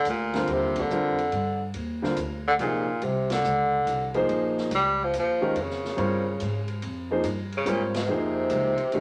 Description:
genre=modal jazz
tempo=142 BPM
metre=3/4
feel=swing 66% on 8ths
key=unclear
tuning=A4 = 438 Hz
part: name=warm tenor saxophone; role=melody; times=0.0-9.0 s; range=Bb2 to G3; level=-28 LUFS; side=equal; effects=none
part: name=upright bass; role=bass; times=0.0-9.0 s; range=Bb1 to Ab2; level=-35 LUFS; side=equal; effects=none
part: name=swinging big-band drum kit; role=drums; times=0.1-9.0 s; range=hi-hat, kick drum, ride cymbal, snare drum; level=-41 LUFS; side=equal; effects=none
part: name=clear concert grand piano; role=accompaniment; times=0.3-9.0 s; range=C3 to Db5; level=-29 LUFS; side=equal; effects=none
room=wet studio reverb, RT60 0.8 s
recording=none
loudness=-26 LUFS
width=mono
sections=0.0-9.0 A section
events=band accent 0.7, 3.2, 7.9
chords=0.0 Cm9; 4.3 Bbm9

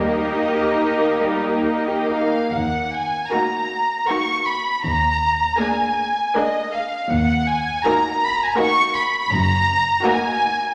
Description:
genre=classical, slow romantic movement for string orchestra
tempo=80 BPM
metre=3/4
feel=uneven beats, rubato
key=Eb minor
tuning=A4 = 440 Hz
part: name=muted chamber violin section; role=melody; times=0.0-10.7 s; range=Eb5 to Db6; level=-22 LUFS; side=equal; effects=none
part: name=muted symphonic violin section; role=second line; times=0.0-10.6 s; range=G3 to Bb4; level=-26 LUFS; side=equal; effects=none
part: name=muted symphonic viola section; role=accompaniment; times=0.0-10.6 s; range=Bb3 to Eb4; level=-29 LUFS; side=equal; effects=none
part: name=muted symphonic cello section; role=bass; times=0.0-9.9 s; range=Eb2 to G4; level=-29 LUFS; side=equal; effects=none
part: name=muted symphonic double bass section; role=bass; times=0.0-9.9 s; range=Gb1 to Eb2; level=-29 LUFS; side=equal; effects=none
room=wet scoring stage reverb, RT60 1.8 s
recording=none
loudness=-20 LUFS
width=mono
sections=0.0-2.5 A section; 2.5-10.7 B section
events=none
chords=0.0 Eb; 2.5 Ebm; 4.8 Bb7/Eb; 7.1 Ebm; 9.3 Ebm/Gb

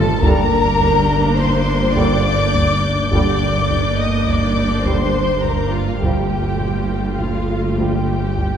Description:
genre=cinematic, suspense film score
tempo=104 BPM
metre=5/4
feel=straight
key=G minor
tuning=A4 = 438 Hz
part: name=rich studio violin section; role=melody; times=0.0-8.6 s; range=F5 to Eb6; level=-24 LUFS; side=left 3 dB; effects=none
part: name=warm studio violin section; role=second line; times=0.0-8.6 s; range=F4 to Eb5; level=-22 LUFS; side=left 2 dB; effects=none
part: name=warm studio viola section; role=accompaniment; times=0.0-8.6 s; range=A3 to F4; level=-23 LUFS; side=right 1 dB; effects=none
part: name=mellow French horn section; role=sustained chords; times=0.0-8.0 s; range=A3 to G4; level=-28 LUFS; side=equal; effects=none
part: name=warm trombone section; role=sustained chords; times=0.0-8.0 s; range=D3 to G3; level=-28 LUFS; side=right 2 dB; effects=none
part: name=dark studio double bass section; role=bass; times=0.0-8.6 s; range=G1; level=-24 LUFS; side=equal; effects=none
part: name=rich studio cello section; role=bass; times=0.0-8.6 s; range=G2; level=-24 LUFS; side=right 3 dB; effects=none
part: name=warm sub bass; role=drone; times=0.0-8.6 s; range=G1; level=-25 LUFS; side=equal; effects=none
part: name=taiko ensemble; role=drums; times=0.1-8.6 s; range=none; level=-23 LUFS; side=equal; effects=none
part: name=warm studio violin section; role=texture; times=0.2-5.7 s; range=D6 to G6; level=-31 LUFS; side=left 5 dB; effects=none
room=wet concert hall reverb, RT60 2.1 s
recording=heard from further back in the room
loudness=-15 LUFS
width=side -8 dB against mid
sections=0.0-8.6 A section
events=drum fill 0.0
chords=0.2 Gm; 6.0 Fadd9/G

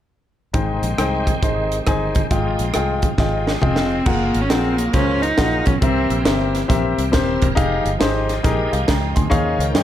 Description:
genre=uptempo gospel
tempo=137 BPM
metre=4/4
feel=swing 65% on 8ths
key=Ab major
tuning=A4 = 443 Hz
part: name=clear concert grand piano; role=accompaniment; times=0.5-9.8 s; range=Ab2 to C6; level=-21 LUFS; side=left 3 dB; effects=none
part: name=bright tonewheel organ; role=sustained chords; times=0.5-9.8 s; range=Eb3 to G5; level=-29 LUFS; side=right 3 dB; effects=slow rotary speaker, chorus vibrato
part: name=fingered electric bass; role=bass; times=0.5-9.8 s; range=Eb1 to G2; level=-23 LUFS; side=equal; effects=none
part: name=crisp fusion drum kit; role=drums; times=0.5-9.8 s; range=crash cymbal, hi-hat, kick drum, rim click, snare drum, toms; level=-20 LUFS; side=equal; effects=none
part: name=rich cello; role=melody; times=3.6-6.2 s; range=Bb3 to Eb4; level=-21 LUFS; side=right 1 dB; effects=none
room=light reverb, small room ambience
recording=none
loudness=-16 LUFS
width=side -11 dB against mid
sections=0.5-4.1 A section; 4.1-9.8 B section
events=drum fill 3.2-4.1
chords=0.5 Abmaj7; 2.3 Fm9/Ab; 4.1 Gbmaj9; 5.8 C7; 7.6 Fm9; 9.3 Eb9sus4

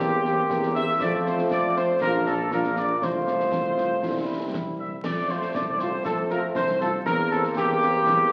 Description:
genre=military-style march for wind band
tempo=119 BPM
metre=2/4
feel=straight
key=F major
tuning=A4 = 439 Hz
part: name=mellow trumpet section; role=melody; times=0.0-8.3 s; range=G4 to E5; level=-27 LUFS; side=equal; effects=none
part: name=clear trombone section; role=sustained chords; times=0.0-8.3 s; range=G3 to F4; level=-34 LUFS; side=equal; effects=none
part: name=mellow tuba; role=bass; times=0.0-8.3 s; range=Bb1 to F2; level=-33 LUFS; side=equal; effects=none
part: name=concert snare drum, concert bass drum and clash cymbals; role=drums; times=0.0-8.3 s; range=none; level=-36 LUFS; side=equal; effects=none
part: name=warm French horn section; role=accompaniment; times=0.3-7.9 s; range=G3 to G4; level=-33 LUFS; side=equal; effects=none
room=wet recital hall reverb, RT60 1.5 s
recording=very old 78 rpm record, vinyl crackle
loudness=-24 LUFS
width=mono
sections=0.0-8.3 A section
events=none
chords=0.0 C7/E; 1.0 F; 2.0 Bb; 3.0 F/C; 4.0 C; 5.0 F; 7.1 C7/E

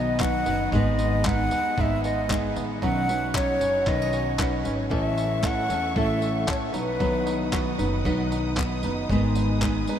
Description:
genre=acoustic pop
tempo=115 BPM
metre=4/4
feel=swing 55% on 16ths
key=unclear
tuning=A4 = 440 Hz
part: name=breathy concert flute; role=melody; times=0.0-7.5 s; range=B4 to F#5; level=-28 LUFS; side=equal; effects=slapback echo
part: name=nylon-string guitar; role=accompaniment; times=0.0-10.0 s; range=G#2 to B4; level=-26 LUFS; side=left 1 dB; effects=none
part: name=dark studio string section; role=sustained chords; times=0.0-10.0 s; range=B3 to D#6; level=-36 LUFS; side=left 1 dB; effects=none
part: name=bluegrass banjo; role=arpeggios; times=0.0-10.0 s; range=E3 to G#4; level=-35 LUFS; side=right 5 dB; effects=none
part: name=upright bass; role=bass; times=0.0-10.0 s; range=F#1 to E2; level=-29 LUFS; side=equal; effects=none
part: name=dusty soul sampler-style drum kit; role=drums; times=0.2-10.0 s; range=handclaps, kick drum, tambourine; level=-31 LUFS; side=equal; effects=none
part: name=group handclap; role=percussion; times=0.2-9.8 s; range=none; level=-41 LUFS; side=left 7 dB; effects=none
room=wet huge ambient reverb, RT60 7.8 s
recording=in a vast, echoing space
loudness=-22 LUFS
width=side -9 dB against mid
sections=0.0-4.9 A section; 4.9-10.0 B section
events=none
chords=0.0 B; 0.7 G#m; 2.8 Badd9; 4.9 A; 6.7 B; 9.1 G#m

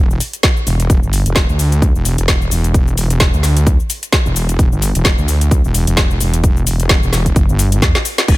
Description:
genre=bass house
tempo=130 BPM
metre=4/4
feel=swing 56% on 16ths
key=E minor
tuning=A4 = 439 Hz
part: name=wobble bass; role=bass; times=0.0-8.4 s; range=E1 to E2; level=-15 LUFS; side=equal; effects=chorus, overdrive, sidechain pumping
part: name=garage drum kit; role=drums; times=0.1-8.4 s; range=crash cymbal, hi-hat, shaker, snare drum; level=-18 LUFS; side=left 1 dB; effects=none
part: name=electronic kick drum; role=drums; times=0.4-8.4 s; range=none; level=-14 LUFS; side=equal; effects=none
room=little or no reverb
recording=none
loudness=-11 LUFS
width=side -18 dB against mid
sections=0.0-8.4 A section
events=drum fill 7.8-8.3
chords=none

